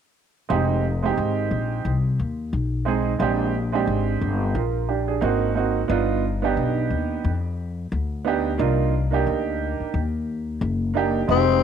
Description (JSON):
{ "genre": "hip hop", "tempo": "89 BPM", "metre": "4/4", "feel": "swing 59% on 16ths", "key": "F dorian", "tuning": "A4 = 439 Hz", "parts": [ { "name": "warm upright piano", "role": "accompaniment", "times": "0.5-11.6 s", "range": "Ab3 to Bb4", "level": "-23 LUFS", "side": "right 8 dB", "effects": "none" }, { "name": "upright bass", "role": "bass", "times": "0.5-11.6 s", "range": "F1 to F2", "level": "-24 LUFS", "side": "left 2 dB", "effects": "transformer saturation" }, { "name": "growling tenor saxophone", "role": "melody", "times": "11.3-11.6 s", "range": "C4", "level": "-17 LUFS", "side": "left 13 dB", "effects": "none" } ], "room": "moderate spring reverb, RT60 1.8 s, studio reverb", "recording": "1960s-style stereo with parts hard left and right", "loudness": "-21 LUFS", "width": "side -8 dB against mid", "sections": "0.5-11.3 A section", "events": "none", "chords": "0.5 Fm7; 3.2 Bb13; 5.2 Ab9; 5.9 G7b13; 8.6 Cm9" }